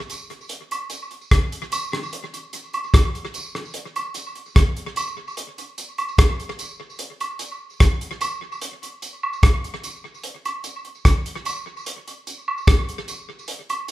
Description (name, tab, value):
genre	reggae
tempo	74 BPM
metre	4/4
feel	straight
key	none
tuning	none
part	damped 70s drum kit	drums	0.1-13.9 s	hi-hat, kick drum, rim click	-18 LUFS	equal	tape echo
part	tambourine and woodblock	percussion	0.1-13.9 s	none	-30 LUFS	right 3 dB	tape echo
room	moderate large studio reverb, RT60 0.8 s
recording	band playing live in one room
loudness	-21 LUFS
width	side -17 dB against mid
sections	0.0-13.9 A section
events	none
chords	none